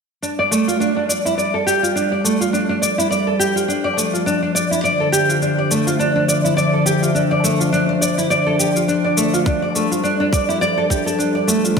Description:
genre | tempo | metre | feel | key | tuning
organic downtempo | 104 BPM | 4/4 | swing 57% on 16ths | unclear | A4 = 440 Hz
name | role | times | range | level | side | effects
warm analog pad | sustained chords | 0.2-11.8 s | D3 to E5 | -21 LUFS | left 2 dB | chorus, sidechain pumping
nylon-string guitar | arpeggios | 0.2-11.8 s | A3 to D5 | -17 LUFS | right 1 dB | lush chorus, low-pass filter, digital delay
cabasa | drums | 0.2-11.8 s | none | -24 LUFS | left 1 dB | none
electronic kick drum | drums | 9.5-11.8 s | none | -20 LUFS | equal | none
room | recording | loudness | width
wet lush hall reverb, RT60 1.7 s | bright 1980s-style digital production | -15 LUFS | side -5 dB against mid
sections
0.2-11.8 A section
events
none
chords
0.2 G9sus4; 4.8 Dm9; 9.5 G9sus4

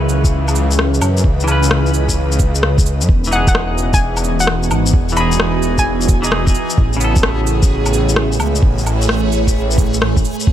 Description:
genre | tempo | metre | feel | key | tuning
future garage | 130 BPM | 4/4 | swing 67% on 16ths | unclear | A4 = 439 Hz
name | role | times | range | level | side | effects
clean electric guitar | accompaniment | 0.0-8.9 s | C#3 to B4 | -23 LUFS | equal | wide subtle chorus, sidechain pumping, analog delay
ethereal airy pad | sustained chords | 0.0-10.5 s | A2 to G#5 | -22 LUFS | right 1 dB | ensemble chorus, built-in reverb, phaser, sidechain pumping
swelling detuned saw bass | bass | 0.0-10.5 s | E1 to F#2 | -17 LUFS | equal | sidechain pumping
electronic cabasa, shaker, woodblock and rim click | drums | 0.1-10.5 s | none | -20 LUFS | left 1 dB | studio ambience
electronic kick drum | drums | 0.2-10.5 s | none | -14 LUFS | equal | studio ambience
backwards swelling texture | texture | 4.1-10.5 s | G#4 | -26 LUFS | right 3 dB | built-in reverb
hollow square pluck | melody | 3.3-6.1 s | F#5 to B5 | -23 LUFS | left 1 dB | chorus, analog delay
room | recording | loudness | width
little or no reverb | none | -12 LUFS | side -11 dB against mid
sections
0.0-10.5 A section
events
none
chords
0.0 C#m7; 3.1 Emaj7; 6.8 Aadd9

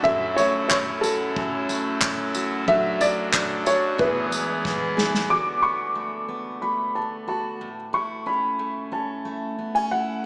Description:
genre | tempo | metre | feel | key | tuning
acoustic pop | 91 BPM | 4/4 | straight | A major | A4 = 442 Hz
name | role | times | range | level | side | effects
dark upright piano | melody | 0.0-10.3 s | A4 to D6 | -23 LUFS | equal | none
felt-muted upright piano | accompaniment | 0.0-5.3 s | F#3 to F#5 | -34 LUFS | equal | none
picked steel-string acoustic guitar | accompaniment | 0.0-10.3 s | E2 to G#4 | -30 LUFS | equal | none
pipe organ, trumpet | sustained chords | 0.0-5.3 s | E2 to A4 | -29 LUFS | equal | none
unplugged drum kit | drums | 0.1-5.3 s | handclaps, kick drum, snare drum, tambourine | -26 LUFS | equal | none
room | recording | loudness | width
wet cathedral reverb, RT60 5.7 s | band playing live in one room, small speaker sound | -21 LUFS | side -29 dB against mid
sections
0.0-5.3 A section; 5.3-10.3 B section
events
drum fill 4.6-5.3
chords
0.1 F#m7; 2.7 D/F#; 4.0 E; 5.3 D6; 7.6 A

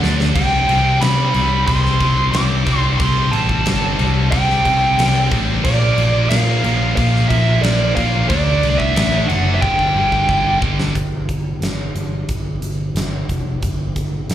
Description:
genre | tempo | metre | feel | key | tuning
hard rock | 90 BPM | 4/4 | straight | unclear | A4 = 439 Hz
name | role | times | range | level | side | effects
distorted electric guitar | riff | 0.0-10.9 s | G2 to D4 | -24 LUFS | right 14 dB | overdrive, slapback echo
scooped high-gain guitar | riff | 0.0-10.9 s | G2 to D4 | -27 LUFS | equal | none
sludgy distorted guitar | riff | 0.0-10.9 s | G2 to D4 | -24 LUFS | left 10 dB | overdrive, slapback echo
picked electric bass | bass | 0.0-14.3 s | F1 to C3 | -18 LUFS | equal | none
huge arena drum kit | drums | 0.0-14.3 s | crash cymbal, hi-hat, kick drum, snare drum | -22 LUFS | equal | none
dark smooth lead guitar | melody | 0.4-10.6 s | D5 to D6 | -19 LUFS | right 1 dB | overdrive, plate reverb, slapback echo, analog delay
room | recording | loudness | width
light reverb | live gig heard through the venue's PA, club reverb | -14 LUFS | side -11 dB against mid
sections
0.0-11.0 A section; 11.0-14.3 B section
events
drum fill 0.0-0.4, 9.6-11.0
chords
0.4 C5; 5.6 Bb; 8.3 D; 9.6 G5; 11.0 N.C.

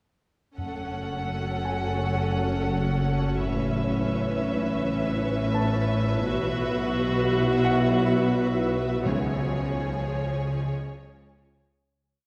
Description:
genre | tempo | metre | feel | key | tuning
cinematic, suspense film score | 85 BPM | 4/4 | straight | F# minor | A4 = 440 Hz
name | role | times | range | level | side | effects
warm studio violin section | melody | 0.6-11.6 s | C#5 to F#5 | -36 LUFS | equal | none
warm studio violin section | second line | 0.6-11.6 s | G#4 to B4 | -38 LUFS | equal | none
rich studio viola section | accompaniment | 0.6-11.6 s | E#3 to F#4 | -35 LUFS | equal | none
dark French horn section | sustained chords | 0.6-11.5 s | E#3 to E4 | -36 LUFS | equal | none
flickering grainy texture | sustained chords | 1.0-11.9 s | E4 to G#5 | -37 LUFS | equal | built-in reverb
rich studio double bass section | bass | 0.6-11.6 s | F#1 to C#2 | -33 LUFS | equal | none
warm studio cello section | bass | 0.6-11.6 s | F#2 to C#3 | -32 LUFS | equal | none
organ-like drone | drone | 1.1-11.9 s | F#1 to C#2 | -34 LUFS | equal | ensemble chorus, built-in reverb
timpani | percussion | 0.6-1.6, 9.1-10.1 s | F#2 to C#3 | -36 LUFS | equal | none
clear grand piano | texture | 1.6-11.9 s | F#5 to A5 | -38 LUFS | equal | none
room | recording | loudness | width
wet scoring stage reverb, RT60 1.7 s | heard from further back in the room | -26 LUFS | mono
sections
0.6-11.9 A section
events
fade-out 9.1-11.9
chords
0.6 F#m; 3.4 Aadd9; 6.2 Esus2/B; 9.1 C#

